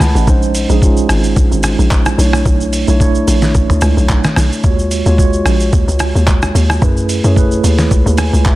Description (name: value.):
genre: amapiano.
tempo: 110 BPM.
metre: 4/4.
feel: swing 55% on 16ths.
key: Eb minor.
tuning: A4 = 440 Hz.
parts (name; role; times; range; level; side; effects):
mellow tine electric piano; accompaniment; 0.0-8.6 s; Ab3 to Cb6; -16 LUFS; right 3 dB; medium stereo tremolo.
hollow log drum bass; bass; 0.0-8.6 s; Ab1 to Gb2; -13 LUFS; equal; none.
trip hop sampler-style drum kit; drums; 0.0-8.6 s; handclaps, hi-hat, kick drum, rim click, shaker, snare drum, toms; -14 LUFS; equal; none.
room: little or no reverb.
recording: dense, heavily limited modern master, faint mains hum.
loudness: -10 LUFS.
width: side -17 dB against mid.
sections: 0.0-8.6 A section.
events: tine electric piano fill 7.9-8.6.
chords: 0.3 Bbm11; 2.2 Bm11; 4.6 Ebm11; 6.8 Gbm11.